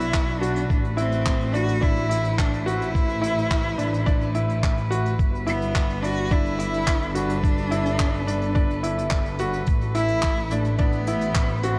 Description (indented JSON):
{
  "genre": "piano and strings electronica",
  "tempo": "107 BPM",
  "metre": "4/4",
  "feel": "straight",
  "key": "A dorian",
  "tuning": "A4 = 439 Hz",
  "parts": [
    { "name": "rich cello", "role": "melody", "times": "0.0-11.8 s", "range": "A3 to F#4", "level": "-31 LUFS", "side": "equal", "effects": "tape echo" },
    { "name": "muted string quartet", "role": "sustained chords", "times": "0.0-11.8 s", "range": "G3 to D5", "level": "-34 LUFS", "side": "equal", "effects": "sidechain pumping" },
    { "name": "warm concert grand piano", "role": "riff", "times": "0.0-11.8 s", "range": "D4 to F#4", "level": "-30 LUFS", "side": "equal", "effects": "tape echo" },
    { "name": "clear chamber double bass section", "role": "bass", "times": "0.0-11.8 s", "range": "G1 to B1", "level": "-29 LUFS", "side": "equal", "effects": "sidechain pumping" },
    { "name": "vintage brush drum kit", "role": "drums", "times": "0.0-11.7 s", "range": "handclaps, hi-hat", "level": "-35 LUFS", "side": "equal", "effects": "none" },
    { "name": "electronic kick drum", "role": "drums", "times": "0.1-11.5 s", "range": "none", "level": "-25 LUFS", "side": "equal", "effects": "none" }
  ],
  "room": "light reverb, small room ambience",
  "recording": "dark, warm production",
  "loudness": "-23 LUFS",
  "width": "mono",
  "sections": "0.0-11.8 A section",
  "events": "none",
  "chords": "0.0 Bm; 0.7 Am; 5.2 G; 9.7 Am",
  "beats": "0.14 | 0.70 1.26 1.82 2.38 | 2.95 3.51 4.07 4.63 | 5.19 5.75 6.31 6.87 | 7.43 7.99 8.55 9.11 | 9.68 10.24 10.80 11.36"
}